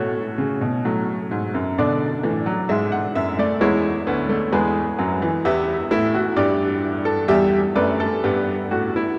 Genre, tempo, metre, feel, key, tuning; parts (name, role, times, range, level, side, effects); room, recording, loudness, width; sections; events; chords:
classical, baroque-style 4-part fugue for grand piano; 65 BPM; 4/4; straight; A4 = 440 Hz
bright baby grand piano; solo; 0.0-9.2 s; D2 to F#5; -21 LUFS; equal
wet cathedral reverb, RT60 6.8 s; in a vast, echoing space; -21 LUFS; mono
0.0-9.2 A section
0.0 F#m/A; 1.8 Bm; 3.6 E; 5.5 Em